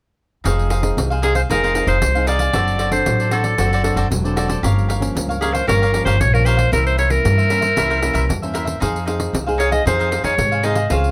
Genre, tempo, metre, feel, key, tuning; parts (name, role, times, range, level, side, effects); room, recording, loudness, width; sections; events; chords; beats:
samba and choro; 115 BPM; 4/4; straight; F minor; A4 = 441 Hz
cavaquinho; accompaniment; 0.4-11.1 s; Eb4 to F5; -27 LUFS; equal
nylon-string guitar; accompaniment; 0.4-11.1 s; G2 to A4; -28 LUFS; equal
upright bass; bass; 0.4-11.1 s; E1 to Ab2; -22 LUFS; equal
pandeiro; percussion; 0.5-11.1 s; -28 LUFS; equal
bright clarinet; melody; 1.2-10.9 s; Ab4 to Eb5; -21 LUFS; equal
light reverb; -18 LUFS; mono
0.5-11.1 A section
0.5 Fm7; 2.5 D7/F#; 4.6 Gm7b5; 6.7 C7b9; 8.8 Fm7
| 0.45 0.97 1.50 2.02 | 2.54 3.06 3.59 4.11 | 4.63 5.15 5.68 6.20 | 6.72 7.25 7.77 8.29 | 8.81 9.34 9.86 10.38 | 10.91